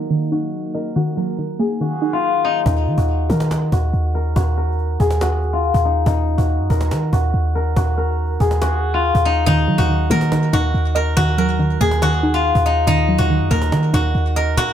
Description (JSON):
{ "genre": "hip hop, trap", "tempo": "141 BPM", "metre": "4/4", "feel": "half-time", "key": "Eb minor", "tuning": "A4 = 439 Hz", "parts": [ { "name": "steel-string zither", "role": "melody", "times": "0.0-14.7 s", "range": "Eb4 to Bb4", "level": "-20 LUFS", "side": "left 2 dB", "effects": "low-pass filter, digital delay" }, { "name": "soft round pluck", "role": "accompaniment", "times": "0.0-2.7, 9.5-14.7 s", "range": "Eb3 to Eb5", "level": "-21 LUFS", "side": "right 2 dB", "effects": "chorus, low-pass filter" }, { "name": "hollow soft pad", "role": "sustained chords", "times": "0.0-2.6 s", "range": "Eb3 to Eb4", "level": "-31 LUFS", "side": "equal", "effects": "chorus" }, { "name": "clean 808-style bass", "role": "bass", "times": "2.7-14.6 s", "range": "Eb2 to Eb3", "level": "-18 LUFS", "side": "equal", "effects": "none" }, { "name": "cajon", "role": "drums", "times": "2.7-14.7 s", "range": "none", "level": "-25 LUFS", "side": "equal", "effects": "none" } ], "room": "small room ambience", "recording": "low-pass filter", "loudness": "-16 LUFS", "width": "side -10 dB against mid", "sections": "0.0-2.7 A section; 2.7-14.7 B section", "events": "filter sweep 0.0-2.7, 2.7-9.5", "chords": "0.0 Ebm" }